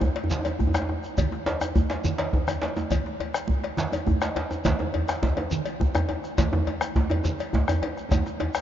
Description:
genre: west african traditional, West African drum ensemble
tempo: 138 BPM (dotted quarters)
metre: 12/8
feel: straight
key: none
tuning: none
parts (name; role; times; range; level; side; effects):
- bombo; percussion; 0.0-8.6 s; none; -28 LUFS; equal; none
- congas; percussion; 0.0-8.3 s; none; -32 LUFS; right 6 dB; none
- djembe; percussion; 0.0-8.5 s; none; -32 LUFS; left 2 dB; none
- djembe; percussion; 0.0-8.5 s; none; -28 LUFS; right 1 dB; none
- cowbell; percussion; 0.2-8.6 s; none; -33 LUFS; left 6 dB; none
- shekere; percussion; 0.3-8.6 s; none; -35 LUFS; equal; none
room: moderate huge ambient reverb, RT60 8.2 s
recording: in a vast, echoing space, nothing above 7.5 kHz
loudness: -23 LUFS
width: side -11 dB against mid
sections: 0.0-8.6 A section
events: drum fill 2.2-2.9, 8.1-8.6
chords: none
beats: 0.30 0.74 | 1.17 1.61 2.04 2.48 | 2.91 3.35 3.78 4.21 | 4.65 5.08 5.52 5.95 | 6.38 6.82 7.25 7.68 | 8.11 8.54

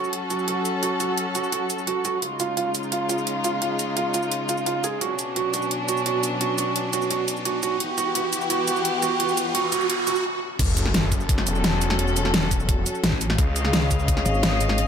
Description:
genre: dark technical drum and bass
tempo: 172 BPM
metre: 4/4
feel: straight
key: unclear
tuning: A4 = 440 Hz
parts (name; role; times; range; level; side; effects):
- warm chamber string section; sustained chords; 0.0-14.9 s; B2 to E#5; -26 LUFS; left 2 dB; sidechain pumping
- felt-muted upright piano; arpeggios; 0.0-10.2 s; E#4 to G#4; -26 LUFS; right 6 dB; sidechain pumping, low-pass filter, dub echo
- dubstep drum kit; drums; 0.0-14.8 s; cabasa, crash cymbal, hi-hat, snare drum; -25 LUFS; equal; overdrive, high-pass filter on snare, high-pass filter on hats, high-pass filter on perc, high-pass filter on cymbals, high-pass filter on room
- riser, noise sweep and sub drop; sound effects; 2.1-12.0 s; none; -31 LUFS; right 1 dB; none
- snarling distorted saw bass; bass; 10.6-14.2 s; E1 to C#2; -25 LUFS; equal; distortion, overdrive
- electronic kick drum; drums; 10.6-14.2 s; none; -23 LUFS; equal; none
- pulsing pluck wobble bass; bass; 13.0-14.9 s; G#1 to A1; -23 LUFS; equal; chorus
room: moderate lush hall reverb, RT60 1.6 s, digital ambience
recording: none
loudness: -21 LUFS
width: side -7 dB against mid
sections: 0.0-10.6 A section; 10.6-14.9 B section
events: build-up 0.0-10.6; riser 2.1-10.2; noise sweep 9.2-10.6; stop 10.2-10.6; drop 10.6-14.9; impact 10.6-12.0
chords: 0.0 F#m; 2.2 C#; 5.0 Bm; 7.8 Em; 10.6 F#m; 13.4 C#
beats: 0.13 0.48 | 0.83 1.18 1.52 1.87 | 2.22 2.57 2.92 3.27 | 3.62 3.97 4.32 4.66 | 5.01 5.36 5.71 6.06 | 6.41 6.76 7.11 7.45 | 7.80 8.15 8.50 8.85 | 9.20 9.55 9.90 10.24 | 10.59 10.94 11.29 11.64 | 11.99 12.34 12.69 13.04 | 13.38 13.73 14.08 14.43 | 14.78

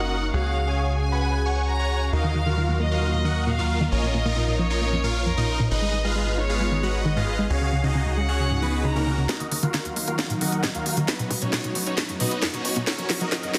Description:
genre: uplifting trance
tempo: 134 BPM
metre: 4/4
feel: straight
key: Eb minor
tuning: A4 = 440 Hz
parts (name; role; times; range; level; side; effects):
- supersaw chords; melody; 0.0-13.5 s; Bb3 to Db6; -31 LUFS; equal; phaser, sidechain pumping, low-pass filter, dub echo
- rich chamber violin section; second line; 0.0-9.3 s; Bb4 to Bb5; -33 LUFS; equal; dub echo
- lush unison pad; sustained chords; 0.0-13.6 s; Db3 to F5; -34 LUFS; equal; chorus, phaser, sidechain pumping
- tight sequencer bass; bass; 0.0-13.6 s; Gb1 to F2; -29 LUFS; equal; sidechain pumping, high-pass filter
- unison pluck; arpeggios; 2.2-13.6 s; Db2 to Eb4; -30 LUFS; equal; sidechain pumping
- swell and riser; sound effects; 8.6-13.6 s; none; -39 LUFS; equal; none
- electronic kick drum; drums; 9.3-13.4 s; none; -37 LUFS; equal; high-pass filter on kick, studio ambience
- house drum kit; drums; 9.3-13.6 s; hi-hat, snare drum; -29 LUFS; equal; studio ambience
room: light reverb, digital ambience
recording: dense, heavily limited modern master, high-pass filter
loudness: -24 LUFS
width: mono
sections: 0.0-9.3 A section; 9.3-13.6 B section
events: filter sweep on analog synth pad 0.0-9.3; swell 8.6-9.3; build-up 9.3-13.6; drum fill 9.3-13.6; filter sweep on supersaw synth 9.3-13.6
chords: 0.3 Dbsus4; 2.1 Ebmadd9; 3.9 Bbm; 5.7 Abm; 7.5 Dbsus4; 9.3 Ebmadd9; 11.1 B; 12.9 Gb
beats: | 0.34 0.78 1.23 1.68 | 2.13 2.58 3.02 3.47 | 3.92 4.37 4.81 5.26 | 5.71 6.16 6.61 7.05 | 7.50 7.95 8.40 8.84 | 9.29 9.74 10.19 10.63 | 11.08 11.53 11.98 12.43 | 12.87 13.32

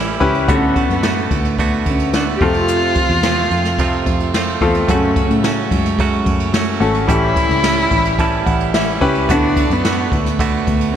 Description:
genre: piano-driven pop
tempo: 109 BPM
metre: 4/4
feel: straight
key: unclear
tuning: A4 = 440 Hz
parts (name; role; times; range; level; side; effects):
- clear baby grand piano; accompaniment; 0.0-11.0 s; A2 to B5; -20 LUFS; left 3 dB; none
- direct-recorded clean electric guitar; riff; 0.0-11.0 s; F2 to F#4; -21 LUFS; right 6 dB; none
- vintage muted fingered electric bass; bass; 0.0-11.0 s; G#1 to A2; -22 LUFS; equal; none
- jazz brush drum kit; drums; 0.1-10.9 s; hi-hat, kick drum, ride cymbal, snare drum; -20 LUFS; equal; gated reverb
- dark cello; melody; 0.5-10.9 s; G#3 to G4; -20 LUFS; equal; none
room: moderate lush hall reverb, RT60 2.3 s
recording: bright 1980s-style digital production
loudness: -13 LUFS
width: side -9 dB against mid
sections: 0.0-11.0 A section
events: grand piano fill 7.6-9.3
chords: 0.5 D6; 2.4 F; 4.9 F#m; 7.1 A7; 9.3 D6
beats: | 0.49 1.04 1.59 2.14 | 2.69 3.24 3.79 4.34 | 4.89 5.44 5.99 6.54 | 7.09 7.64 8.19 8.74 | 9.29 9.85 10.40 10.95

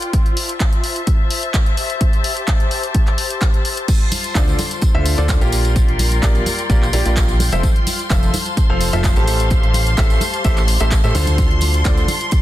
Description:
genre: piano house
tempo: 128 BPM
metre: 4/4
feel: straight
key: D minor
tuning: A4 = 440 Hz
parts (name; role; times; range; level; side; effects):
- punchy analog drum machine; drums; 0.0-12.4 s; crash cymbal, handclaps, hi-hat; -25 LUFS; equal; none
- muted studio string section; texture; 0.0-12.4 s; F4 to A5; -25 LUFS; left 3 dB; sidechain pumping
- electronic kick drum; drums; 0.1-12.4 s; none; -16 LUFS; equal; none
- string machine, violins; sustained chords; 3.9-12.4 s; C6; -27 LUFS; equal; ensemble chorus, vintage 12-bit sampler grit, sidechain pumping
- tambourine and congas; percussion; 3.9-12.4 s; none; -28 LUFS; right 1 dB; none
- clear grand piano; riff; 4.4-12.1 s; D3 to A5; -23 LUFS; equal; sidechain pumping, ping-pong delay
- fat analog bass; bass; 4.4-12.1 s; F1 to A2; -18 LUFS; equal; sidechain pumping
room: studio reverb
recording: dense, heavily limited modern master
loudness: -14 LUFS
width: side -14 dB against mid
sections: 0.0-12.4 A section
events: none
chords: 0.0 Fmaj7; 1.8 Am7; 3.9 Dm7; 5.5 Bb6; 7.4 Fmaj7; 9.3 Am7; 11.4 Dm7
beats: | 0.13 0.60 1.07 1.54 | 2.01 2.48 2.95 3.42 | 3.88 4.35 4.82 5.29 | 5.76 6.23 6.70 7.17 | 7.63 8.10 8.57 9.04 | 9.51 9.98 10.45 10.92 | 11.38 11.85 12.32

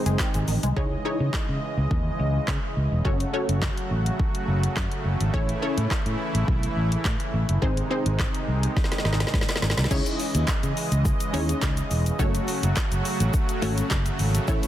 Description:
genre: dance-pop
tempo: 105 BPM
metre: 4/4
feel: straight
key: C# harmonic minor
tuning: A4 = 440 Hz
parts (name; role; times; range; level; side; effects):
- wide unison pluck; accompaniment; 0.0-14.7 s; G#3 to C#5; -30 LUFS; left 1 dB; sidechain pumping
- soft supersaw; sustained chords; 0.0-14.7 s; B#2 to D#5; -30 LUFS; right 1 dB; sidechain pumping
- resonant blip pluck; arpeggios; 0.1-0.7, 14.5-14.6 s; D#3 to G#4; -35 LUFS; equal; chorus, phaser, sidechain pumping, tape echo
- fingered electric bass; bass; 0.1-14.6 s; E1 to C#3; -24 LUFS; equal; sidechain pumping
- deep house drum kit; drums; 0.1-14.7 s; crash cymbal, handclaps, hi-hat, kick drum, shaker, snare drum; -26 LUFS; equal; none
- group handclap; percussion; 0.2-0.3, 10.5-14.1 s; none; -41 LUFS; right 6 dB; none
room: little or no reverb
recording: dense, heavily limited modern master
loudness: -22 LUFS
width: side -12 dB against mid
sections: 0.8-9.9 A section; 9.9-14.7 B section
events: drum fill 8.8-9.9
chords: 0.0 G#; 0.8 C#madd9; 3.1 F#m; 5.3 A; 7.6 G#; 9.9 C#madd9; 12.2 F#m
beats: 0.19 | 0.77 1.34 1.91 2.48 | 3.05 3.62 4.19 4.77 | 5.34 5.91 6.48 7.05 | 7.62 8.19 8.77 9.34 | 9.91 10.48 11.05 11.62 | 12.19 12.77 13.34 13.91 | 14.48

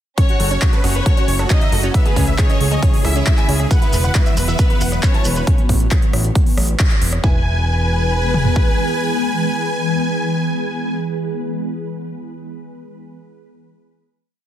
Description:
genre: uplifting trance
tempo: 136 BPM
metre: 4/4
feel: straight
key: E major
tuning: A4 = 440 Hz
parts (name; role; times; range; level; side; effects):
- dense compressed supersaw; melody; 0.2-10.9 s; F#4 to A5; -25 LUFS; equal; sidechain pumping, dub echo
- bright baby grand piano; second line; 0.2-10.9 s; F#4 to A5; -34 LUFS; equal; none
- warm studio violin section; second line; 0.2-10.9 s; B3 to E5; -26 LUFS; left 1 dB; dub echo
- shimmering ambient pad; sustained chords; 0.7-10.9 s; E3 to G#4; -24 LUFS; equal; chorus, built-in reverb, phaser, vintage 12-bit sampler grit, sidechain pumping
- analog pluck; arpeggios; 0.2-7.4 s; C#4 to B4; -28 LUFS; right 5 dB; chorus, sidechain pumping, tape echo
- big-room dance drum kit; drums; 0.2-8.7 s; kick drum, toms; -15 LUFS; equal; none
- big-room dance drum kit; drums; 0.2-7.2 s; handclaps, hi-hat, rim click; -25 LUFS; equal; sidechain pumping on hats
- fat analog bass; bass; 0.4-8.5 s; E1 to C#2; -18 LUFS; equal; sidechain pumping
- shekere; percussion; 3.7-5.5 s; none; -30 LUFS; right 1 dB; none
room: light reverb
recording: dense, heavily limited modern master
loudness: -14 LUFS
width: side -11 dB against mid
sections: 0.2-7.2 drop; 7.2-10.8 final chord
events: drop 0.2-7.2; band accent 6.8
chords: 0.2 F#m; 1.9 C#m; 3.7 Esus2; 5.5 A5; 7.2 E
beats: | 0.18 0.62 1.06 1.50 | 1.94 2.38 2.83 3.27 | 3.71 4.15 4.59 5.03 | 5.47 5.91 6.36 6.80 | 7.24 7.68 8.12 8.56 | 9.00 9.44 9.88 10.32

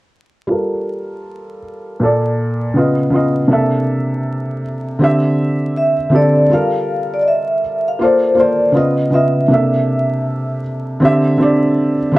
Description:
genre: hip hop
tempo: 80 BPM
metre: 4/4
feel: swing 61% on 16ths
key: G dorian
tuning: A4 = 440 Hz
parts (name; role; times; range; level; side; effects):
- felt-muted upright piano; accompaniment; 0.5-12.2 s; Bb2 to E5; -14 LUFS; equal; cassette tape, low-pass filter
- vibraphone with soft mallets; melody; 5.8-10.2 s; C5 to F5; -15 LUFS; left 1 dB; analog delay
room: moderate studio reverb, RT60 0.5 s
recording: dark, warm production, vinyl crackle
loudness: -13 LUFS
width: side -18 dB against mid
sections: 0.5-6.5 A section; 6.5-12.2 B section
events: filter sweep on felt piano 0.5-6.5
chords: 0.5 Gm9; 2.0 Bbmaj7; 2.7 C#9; 3.5 C13; 5.0 D9sus4; 6.5 Gm9; 8.0 Bbmaj7; 8.7 C#9; 9.5 C13; 11.0 D9sus4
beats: | 0.50 1.25 2.00 2.75 | 3.50 4.25 5.00 5.75 | 6.50 7.25 8.00 8.75 | 9.50 10.25 11.00 11.75

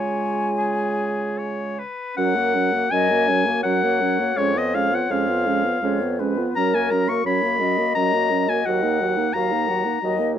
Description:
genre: classical, slow romantic movement for wind quintet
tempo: 83 BPM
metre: 3/4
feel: uneven beats, rubato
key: F# major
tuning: A4 = 441 Hz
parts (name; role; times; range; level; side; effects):
- mellow silver concert flute; melody; 0.0-10.4 s; A#4 to G#5; -27 LUFS; left 6 dB; none
- clear oboe; second line; 0.0-10.4 s; G#4 to C#6; -23 LUFS; left 4 dB; none
- mellow clarinet; accompaniment; 0.0-10.4 s; C#4 to F#4; -28 LUFS; right 9 dB; none
- warm French horn; accompaniment; 0.0-10.4 s; F#3 to B3; -27 LUFS; right 1 dB; none
- mellow bassoon; bass; 0.0-10.4 s; D#2 to C#3; -26 LUFS; right 3 dB; none
room: light reverb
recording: dark, warm production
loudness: -19 LUFS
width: side -9 dB against mid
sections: 0.0-2.2 A section; 2.2-10.4 B section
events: none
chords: 0.0 C#; 2.2 F#; 4.4 C#7/E#; 6.6 F#; 8.7 D#m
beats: 0.58 1.39 | 2.17 2.90 3.63 | 4.37 5.10 5.83 | 6.55 7.25 7.95 | 8.66 9.34 10.02

